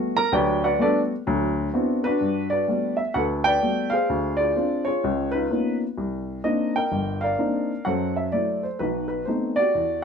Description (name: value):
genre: solo jazz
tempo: 127 BPM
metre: 4/4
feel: swing 65% on 8ths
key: G major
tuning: A4 = 438 Hz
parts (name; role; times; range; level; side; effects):
- dark upright piano; solo; 0.0-10.0 s; G1 to Bb5; -21 LUFS; equal; none
room: wet small room reverb, RT60 0.5 s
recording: heard from further back in the room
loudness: -21 LUFS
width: side -6 dB against mid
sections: 0.0-2.2 A section; 2.2-10.0 B section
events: upright piano solo 0.0-2.2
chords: 0.0 Gmaj9; 1.3 D13; 2.2 Gmaj9; 4.1 Dm7b5; 5.0 C#13; 6.0 Cm9; 7.9 F#m7b5; 8.8 B7b9